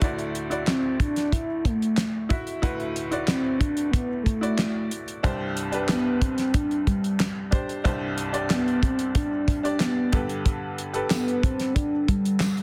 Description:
piano-driven pop; 92 BPM; 4/4; straight; D mixolydian; A4 = 440 Hz
bright upright piano; accompaniment; 0.0-12.6 s; C2 to E5; -32 LUFS; equal; plate reverb
damped 70s drum kit; drums; 0.0-12.6 s; handclaps, hi-hat, kick drum, snare drum; -28 LUFS; equal; soft clipping on kick
mellow horn-like synth lead; melody; 0.7-12.6 s; G3 to E4; -28 LUFS; equal; chorus, plate reverb
tambourine; percussion; 11.1-12.6 s; -42 LUFS; equal
light reverb; dense, heavily limited modern master; -25 LUFS; mono
0.0-12.6 A section
0.0 Dadd9; 5.2 Csus2; 10.1 Gadd9
| 0.02 0.67 1.33 1.98 | 2.63 3.28 3.94 4.59 | 5.24 5.89 6.55 7.20 | 7.85 8.50 9.15 9.81 | 10.46 11.11 11.76 12.41

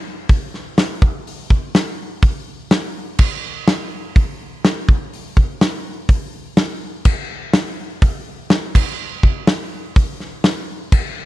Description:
rock; 124 BPM; 4/4; straight
big rock drum kit; drums; 0.3-11.0 s; crash cymbal, hi-hat, kick drum, snare drum; -16 LUFS; equal
little or no reverb; dry, close 1970s-style studio recording; -16 LUFS; side -16 dB against mid
0.0-11.3 A section
0.29 0.77 | 1.26 1.74 2.22 2.71 | 3.19 3.67 4.15 4.64 | 5.12 5.60 6.09 6.57 | 7.05 7.54 8.02 8.50 | 8.98 9.46 9.95 10.43 | 10.91

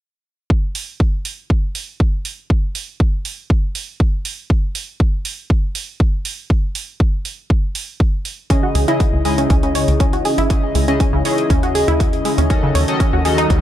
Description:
progressive house; 120 BPM; 4/4; straight; C# minor; A4 = 440 Hz
electronic kick drum; drums; 0.5-13.6 s; -16 LUFS; equal
electronic hi-hat; drums; 0.8-13.6 s; -27 LUFS; right 6 dB
wide unison pluck; arpeggios; 8.5-13.4 s; C#3 to C#5; -20 LUFS; equal; sidechain pumping, ping-pong delay
chorused polysynth; stabs; 8.5-13.6 s; C#3 to D#5; -19 LUFS; left 1 dB; sidechain pumping, ping-pong delay
tight sequencer bass; bass; 8.8-13.6 s; G#1 to D#2; -20 LUFS; equal; sidechain pumping
riser; sound effects; 13.1-13.6 s; -30 LUFS; equal
little or no reverb; -16 LUFS; side -12 dB against mid
0.5-13.6 A section
0.5 N.C.; 8.5 C#madd9; 12.5 D#m7b5
| 0.50 1.00 1.50 2.00 | 2.50 3.00 3.50 4.00 | 4.50 5.00 5.50 6.00 | 6.50 7.00 7.50 8.00 | 8.50 9.00 9.50 10.00 | 10.50 11.00 11.50 12.00 | 12.50 13.00 13.50

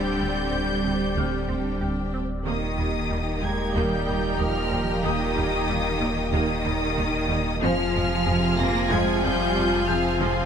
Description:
cinematic, hybrid orchestral and electronic film score; 93 BPM; 4/4; straight; A4 = 441 Hz
rich symphonic violin section; melody; 0.0-10.5 s; C6 to Bb6; -31 LUFS; left 3 dB
rich symphonic violin section; second line; 0.0-10.5 s; G4 to Ab5; -33 LUFS; left 1 dB
rich symphonic viola section; accompaniment; 0.0-10.5 s; C3 to G4; -32 LUFS; right 1 dB
bright trombone section; sustained chords; 0.0-10.5 s; Bb2 to G4; -32 LUFS; right 4 dB
mellow French horn section; sustained chords; 0.0-10.5 s; F3 to F4; -33 LUFS; left 4 dB
sweeping resonant pad; sustained chords; 0.0-10.5 s; Eb3 to F5; -31 LUFS; right 1 dB; lush chorus
resonant blip pluck; arpeggios; 0.0-10.4 s; Eb3 to G4; -36 LUFS; right 2 dB
rich symphonic cello section; bass; 0.0-10.5 s; C3 to Bb3; -29 LUFS; right 1 dB
sub bass with octave; bass; 0.0-10.5 s; D1 to F1; -31 LUFS; left 1 dB
clear baby grand piano; texture; 0.0-10.5 s; Ab5 to G6; -38 LUFS; left 6 dB; ping-pong delay
rich symphonic double bass section; bass; 0.2-10.3 s; D2 to F2; -31 LUFS; right 2 dB
moderate scoring stage reverb, RT60 1.8 s; -22 LUFS; side -7 dB against mid
0.0-10.5 A section
0.0 Gsus4/D; 2.5 Eb; 7.6 Fm
0.53 1.17 1.82 | 2.46 3.11 3.75 4.40 | 5.04 5.69 6.33 6.98 | 7.62 8.27 8.91 9.56 | 10.20

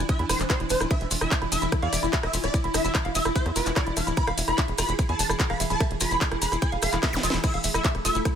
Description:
psychedelic trance; 147 BPM; 4/4; straight; A4 = 441 Hz
pulsing gated texture; sustained chords; 0.0-8.4 s; E3 to A4; -32 LUFS; equal; chorus, built-in reverb, sidechain pumping
woody wave-folded pluck; riff; 0.0-8.3 s; D4 to F5; -32 LUFS; moving between left 2 dB and right 4 dB; chorus, auto-pan, sidechain pumping, dub echo
tight sequencer bass; bass; 0.0-8.2 s; D1 to E2; -30 LUFS; equal
swarming rave lead; melody; 0.1-8.2 s; B4 to B5; -30 LUFS; right 1 dB; chorus, phaser, cassette tape, sidechain pumping, dub echo
electronic kick drum; drums; 0.1-8.3 s; -25 LUFS; equal
garage drum kit; drums; 0.1-8.3 s; crash cymbal, handclaps, hi-hat, ride cymbal, rim click, snare drum; -29 LUFS; right 1 dB
maracas; percussion; 0.1-8.3 s; -33 LUFS; left 5 dB
zap; sound effects; 7.1-7.2 s; -36 LUFS; equal
light reverb, digital ambience; -22 LUFS; side -8 dB against mid
0.0-8.4 A section
drum fill 7.0-7.4
0.0 Dsus2
0.09 0.50 | 0.91 1.31 1.72 2.13 | 2.54 2.95 3.36 3.76 | 4.17 4.58 4.99 5.40 | 5.80 6.21 6.62 7.03 | 7.44 7.85 8.25

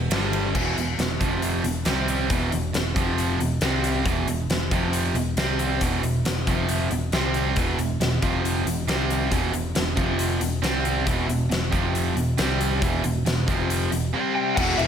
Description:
hard rock; 137 BPM; 4/4; straight; A4 = 441 Hz
cranked stack guitar; riff; 0.0-14.9 s; E2 to C4; -26 LUFS; right 8 dB; overdrive
crunchy overdriven guitar; riff; 0.0-14.9 s; E2 to C4; -29 LUFS; left 9 dB
picked electric bass; bass; 0.0-14.9 s; E1 to C2; -27 LUFS; equal
huge arena drum kit; drums; 0.1-14.9 s; crash cymbal, hi-hat, kick drum, ride cymbal, snare drum; -26 LUFS; equal
lead guitar through a small cranked amp; melody; 14.3-14.9 s; E5 to G5; -24 LUFS; left 3 dB; overdrive, slapback echo
tight distorted guitar; riff; 14.6-14.9 s; E2 to E3; -30 LUFS; equal; distortion
light reverb, studio reverb; -21 LUFS; side -8 dB against mid
0.6-14.6 A section
0.1 G5; 0.6 E5; 1.2 F5; 1.6 E5; 1.9 C5; 2.3 E5; 3.0 F5; 3.4 E5; 3.6 C5; 4.1 E5; 4.7 F5; 5.2 E5; 5.4 C5; 5.8 E5; 6.5 F5; 6.9 E5; 7.1 C5; 7.6 E5; 8.2 F5; 8.7 E5; 8.9 C5; 9.3 E5; 10.0 F5; 10.4 E5; 10.6 C5; 11.1 E5; 11.7 F5; 12.2 E5; 12.4 C5; 12.8 E5; 13.5 F5; 13.9 E5; 14.1 C5
0.11 | 0.55 0.99 1.43 1.86 | 2.30 2.74 3.18 3.62 | 4.06 4.49 4.93 5.37 | 5.81 6.25 6.69 7.12 | 7.56 8.00 8.44 8.88 | 9.31 9.75 10.19 10.63 | 11.07 11.51 11.94 12.38 | 12.82 13.26 13.70 14.13 | 14.57

